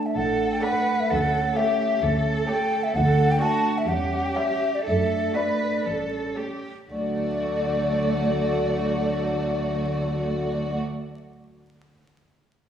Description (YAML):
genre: quick classical-period movement for symphony orchestra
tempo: 110-132 BPM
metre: 4/4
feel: rubato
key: D major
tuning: A4 = 440 Hz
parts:
  - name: dark studio violin section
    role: melody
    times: 0.0-10.8 s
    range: C#5 to D5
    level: -37 LUFS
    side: left 2 dB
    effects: none
  - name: mellow hollow concert flute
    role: second line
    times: 0.0-10.8 s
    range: D5 to A5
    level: -26 LUFS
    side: left 1 dB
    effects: none
  - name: rich studio violin section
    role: second line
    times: 0.0-10.8 s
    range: F#4 to A4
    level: -36 LUFS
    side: left 1 dB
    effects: none
  - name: warm studio viola section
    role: accompaniment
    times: 0.0-10.8 s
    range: G3 to A3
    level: -32 LUFS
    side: right 3 dB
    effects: none
  - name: mellow French horn section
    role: sustained chords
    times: 0.0-10.8 s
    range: F#3 to D4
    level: -30 LUFS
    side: equal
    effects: none
  - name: rich studio double bass section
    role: bass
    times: 0.2-10.8 s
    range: A1 to F#2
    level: -28 LUFS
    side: right 1 dB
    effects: none
  - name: warm studio cello section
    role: bass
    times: 0.2-10.8 s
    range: D2 to B4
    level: -29 LUFS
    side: right 3 dB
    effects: none
room: wet scoring stage reverb, RT60 1.7 s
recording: vinyl crackle, studio reverb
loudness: -22 LUFS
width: side -9 dB against mid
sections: 0.0-6.9 A section; 6.9-11.1 B section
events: slowing down 2.0-6.9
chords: 0.0 D5; 1.1 A7/D; 2.9 D; 3.9 C#dim/E; 4.8 D/F#; 5.8 A7; 6.9 D